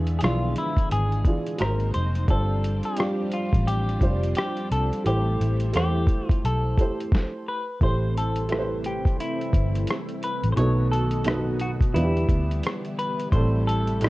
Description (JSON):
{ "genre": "lo-fi hip hop", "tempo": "87 BPM", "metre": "4/4", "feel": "swing 61% on 16ths", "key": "A minor", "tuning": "A4 = 440 Hz", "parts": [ { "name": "semi-hollow electric guitar", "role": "melody", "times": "0.0-14.1 s", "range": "E4 to C#5", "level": "-30 LUFS", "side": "left 2 dB", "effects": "low-pass filter, plate reverb" }, { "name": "warm upright piano", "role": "accompaniment", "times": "0.0-14.1 s", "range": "A2 to B#4", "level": "-29 LUFS", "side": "right 2 dB", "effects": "cassette tape, low-pass filter, plate reverb" }, { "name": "string machine, violins", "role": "sustained chords", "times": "0.0-14.1 s", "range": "C3 to E5", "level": "-33 LUFS", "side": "equal", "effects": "ensemble chorus, low-pass filter" }, { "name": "vintage muted fingered electric bass", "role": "bass", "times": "0.0-14.1 s", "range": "F1 to E2", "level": "-24 LUFS", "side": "equal", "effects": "none" }, { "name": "lo-fi sampler-style drum kit", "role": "drums", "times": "0.1-14.1 s", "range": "hi-hat, kick drum, rim click, snare drum", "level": "-23 LUFS", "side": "equal", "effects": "none" } ], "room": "moderate studio reverb, RT60 0.6 s", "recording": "cassette tape", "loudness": "-22 LUFS", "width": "side -19 dB against mid", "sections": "0.0-7.8 A section; 7.8-14.1 B section", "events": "stop 7.1-7.8", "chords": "0.0 E7b9; 1.6 G#9; 2.3 G7sus4; 5.0 Am7; 10.6 B7; 11.9 Em7; 13.3 Am7", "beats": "0.22 0.91 1.60 | 2.29 2.98 3.67 4.36 | 5.05 5.74 6.42 7.12 | 7.80 8.49 9.18 9.87 | 10.56 11.25 11.94 12.63 | 13.32 14.01" }